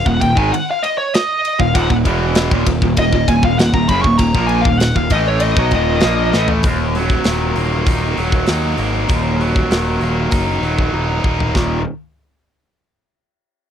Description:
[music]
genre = heavy metal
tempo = 98 BPM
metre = 4/4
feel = straight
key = Eb minor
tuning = A4 = 440 Hz
[part]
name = high-gain lead guitar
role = melody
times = 0.0-6.5 s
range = Db5 to Db6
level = -18 LUFS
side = equal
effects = distortion, slapback echo
[part]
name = fuzz picked electric bass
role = bass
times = 0.0-11.8 s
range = Eb1 to Eb2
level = -19 LUFS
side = equal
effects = overdrive
[part]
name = high-gain distorted guitar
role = riff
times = 0.1-11.8 s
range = Eb2 to Eb4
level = -17 LUFS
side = equal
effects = distortion
[part]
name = tight metal drum kit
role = drums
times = 0.1-11.7 s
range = hi-hat, kick drum, ride cymbal, snare drum, toms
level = -18 LUFS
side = equal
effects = none
[sound]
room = little or no reverb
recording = dry, close 1970s-style studio recording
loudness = -13 LUFS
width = side -9 dB against mid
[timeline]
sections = 0.0-6.6 A section; 6.6-11.6 B section; 11.6-13.7 C section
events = lead electric guitar solo 0.0-6.6; drum fill 6.3-6.6, 10.9-11.6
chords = 0.0 Eb5; 6.6 Ebm; 11.6 Eb5

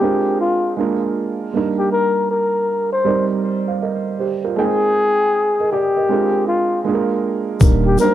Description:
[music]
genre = lo-fi hip hop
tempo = 79 BPM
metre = 4/4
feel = swing 64% on 16ths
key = unclear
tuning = A4 = 441 Hz
[part]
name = breathy flugelhorn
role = melody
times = 0.0-8.1 s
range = F4 to C5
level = -18 LUFS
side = left 2 dB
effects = cassette tape, tape echo
[part]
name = dark upright piano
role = accompaniment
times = 0.0-8.1 s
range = F#3 to G5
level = -19 LUFS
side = right 5 dB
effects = cassette tape
[part]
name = warm sub bass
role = bass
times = 7.6-8.0 s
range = Eb1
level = -17 LUFS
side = left 1 dB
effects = none
[part]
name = electronic kick drum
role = drums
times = 7.6-7.8 s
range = none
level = -11 LUFS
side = left 1 dB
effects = overdrive
[part]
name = tube shaker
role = percussion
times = 7.6-8.1 s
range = none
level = -32 LUFS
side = left 11 dB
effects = none
[sound]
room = light reverb, small room ambience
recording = home recording on cassette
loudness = -16 LUFS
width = side -12 dB against mid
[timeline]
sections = 0.0-7.6 A section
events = hi-hats muted 7.6-8.1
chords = 0.0 Bb9; 0.8 Bb7; 1.5 Ebmaj7; 3.0 Cm9; 4.6 Abmaj9; 6.1 Bb9; 6.8 Bb7; 7.6 Ebmaj7

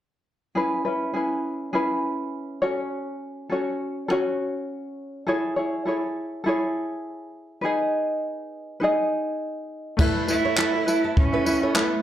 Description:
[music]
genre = acoustic pop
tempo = 102 BPM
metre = 4/4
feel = swing 55% on 16ths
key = unclear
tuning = A4 = 440 Hz
[part]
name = tenor ukulele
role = accompaniment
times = 0.6-12.0 s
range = C#4 to E5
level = -24 LUFS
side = equal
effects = slapback echo
[part]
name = warm concert grand piano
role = accompaniment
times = 10.0-12.0 s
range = A3 to B4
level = -31 LUFS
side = left 7 dB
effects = slapback echo
[part]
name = nylon-string guitar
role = arpeggios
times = 10.0-11.8 s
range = A4 to C#5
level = -32 LUFS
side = right 4 dB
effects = slapback echo
[part]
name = jazz brush drum kit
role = drums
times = 10.0-11.9 s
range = crash cymbal, handclaps, kick drum, tambourine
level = -23 LUFS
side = equal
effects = none
[part]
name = warm cello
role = melody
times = 10.3-12.0 s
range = A3 to E4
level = -25 LUFS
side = right 4 dB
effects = none
[sound]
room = moderate plate reverb, RT60 1.3 s, small room ambience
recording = live gig heard through the venue's PA, club reverb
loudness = -23 LUFS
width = side -11 dB against mid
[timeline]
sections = 0.6-10.0 A section; 10.0-12.0 B section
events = none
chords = 0.6 E6; 2.6 F#m; 5.3 Amaj7; 7.6 G#m; 10.0 Asus2

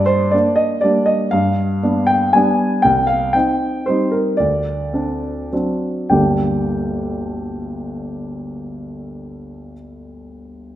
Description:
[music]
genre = classical, piano waltz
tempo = 97-125 BPM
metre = 3/4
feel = rubato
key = G minor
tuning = A4 = 439 Hz
[part]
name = warm grand piano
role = solo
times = 0.0-10.8 s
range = G1 to Ab5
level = -16 LUFS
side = equal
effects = none
[sound]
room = moderate recital hall reverb, RT60 1.3 s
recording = none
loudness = -15 LUFS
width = side -12 dB against mid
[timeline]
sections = 0.0-6.1 A section; 6.1-9.4 B section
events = slowing down 2.1-6.1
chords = 0.0 Gm; 1.3 G7; 2.8 Cm; 4.4 D7; 6.1 Gm

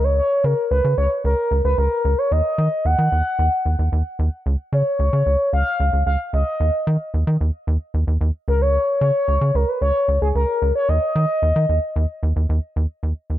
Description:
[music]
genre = synth-pop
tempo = 112 BPM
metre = 4/4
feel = straight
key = unclear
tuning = A4 = 444 Hz
[part]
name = expressive synth lead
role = melody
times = 0.0-12.5 s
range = Ab4 to Gb5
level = -20 LUFS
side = left 1 dB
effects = chorus, tape echo
[part]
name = rubbery square bass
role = bass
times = 0.0-13.4 s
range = Db2 to Eb3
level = -18 LUFS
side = equal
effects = none
[sound]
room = light reverb, digital ambience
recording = dark, warm production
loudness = -17 LUFS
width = side -13 dB against mid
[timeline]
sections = 0.0-13.0 A section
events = none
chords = 0.0 Bbm/Db; 2.3 Ebm; 4.5 Db; 6.6 N.C.; 8.5 Bbm/Db; 10.9 N.C.

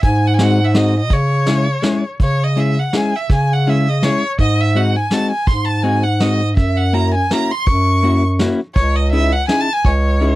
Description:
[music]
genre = musette waltz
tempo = 165 BPM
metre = 3/4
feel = swing 54% on 8ths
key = C# harmonic minor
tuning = A4 = 441 Hz
[part]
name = rich violin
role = melody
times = 0.0-10.4 s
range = C#5 to C#6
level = -20 LUFS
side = equal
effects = none
[part]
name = breathy bass clarinet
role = bass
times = 0.0-10.4 s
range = C#2 to C#3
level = -16 LUFS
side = equal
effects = none
[part]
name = vintage brush drum kit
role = drums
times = 0.0-10.3 s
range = hi-hat, kick drum, snare drum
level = -17 LUFS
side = equal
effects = none
[part]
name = hollow-body jazz guitar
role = accompaniment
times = 0.4-10.4 s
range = G#3 to G#4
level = -18 LUFS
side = left 3 dB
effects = none
[sound]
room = little or no reverb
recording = dry, close 1970s-style studio recording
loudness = -13 LUFS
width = side -17 dB against mid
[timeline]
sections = 0.0-2.2 A section; 2.2-10.4 B section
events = none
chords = 0.0 G#7; 1.1 C#m; 4.4 G#7; 6.6 F#7; 8.8 C#madd9

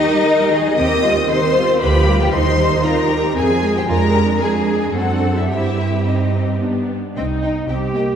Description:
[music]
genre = quick classical-period movement for string orchestra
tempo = 107-117 BPM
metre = 3/4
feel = rubato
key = C minor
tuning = A4 = 440 Hz
[part]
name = rich symphonic violin section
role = melody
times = 0.0-8.0 s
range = Eb5 to Eb6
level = -23 LUFS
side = left 4 dB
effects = none
[part]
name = rich symphonic violin section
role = second line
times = 0.0-8.0 s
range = Eb4 to G5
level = -20 LUFS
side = left 2 dB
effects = none
[part]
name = warm symphonic viola section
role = accompaniment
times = 0.0-8.2 s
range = C3 to F4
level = -20 LUFS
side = right 1 dB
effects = none
[part]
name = rich symphonic cello section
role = bass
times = 0.0-8.2 s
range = C4 to Bb4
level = -24 LUFS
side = right 1 dB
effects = none
[part]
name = clear symphonic double bass section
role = bass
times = 0.8-8.2 s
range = C2 to G2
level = -20 LUFS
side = right 3 dB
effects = none
[sound]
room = wet concert hall reverb, RT60 2.4 s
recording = dark, warm production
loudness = -14 LUFS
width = side -8 dB against mid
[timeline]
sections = 0.0-7.2 A section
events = none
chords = 0.0 Eb; 0.8 Cm/Eb; 1.8 G7/D; 2.3 Cm/Eb; 3.4 Fm; 3.9 Ddim/F; 4.9 D7/F#; 5.5 Cm/G; 6.6 G; 7.2 Cm

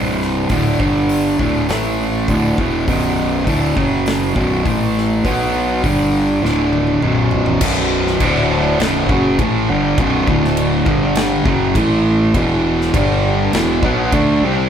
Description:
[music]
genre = stoner and doom metal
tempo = 101 BPM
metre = 4/4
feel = straight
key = B phrygian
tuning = A4 = 440 Hz
[part]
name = fuzz guitar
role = riff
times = 0.0-14.7 s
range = B1 to D4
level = -15 LUFS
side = equal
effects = distortion
[part]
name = fuzz fingered electric bass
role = bass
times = 0.0-14.7 s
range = B0 to D2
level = -22 LUFS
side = equal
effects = overdrive
[part]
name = big rock drum kit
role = drums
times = 0.2-14.3 s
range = crash cymbal, hi-hat, kick drum, snare drum, toms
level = -21 LUFS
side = equal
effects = none
[sound]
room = moderate large studio reverb, RT60 1.3 s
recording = band playing live in one room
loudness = -14 LUFS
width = side -8 dB against mid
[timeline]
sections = 0.0-7.6 A section; 7.6-14.7 B section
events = drum fill 6.4-7.6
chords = 0.0 C5; 0.5 D5; 0.8 G5; 1.4 D5; 1.7 A5; 2.3 D5; 2.9 Bm; 3.8 F#5; 4.4 B5; 4.7 A5; 5.2 B5; 5.8 G5; 6.4 D5; 7.0 B5; 8.2 D5; 8.8 Bm; 10.3 D5; 10.9 G5; 11.5 F#5; 11.8 A5; 12.3 E5; 12.9 G5; 13.5 E5

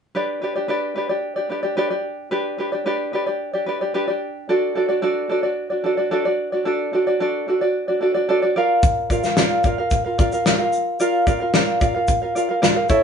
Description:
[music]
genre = acoustic pop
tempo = 111 BPM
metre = 4/4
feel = straight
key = unclear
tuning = A4 = 440 Hz
[part]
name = tenor ukulele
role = accompaniment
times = 0.1-13.0 s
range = D4 to F5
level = -19 LUFS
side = equal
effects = none
[part]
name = loose indie drum kit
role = drums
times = 8.8-13.0 s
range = kick drum, shaker, snare drum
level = -20 LUFS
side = left 1 dB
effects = none
[sound]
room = moderate studio reverb, RT60 0.5 s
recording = band playing live in one room, nothing above 10.4 kHz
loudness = -18 LUFS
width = side -7 dB against mid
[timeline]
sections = 0.1-13.0 A section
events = none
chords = 0.1 G; 4.5 D; 8.6 Bb

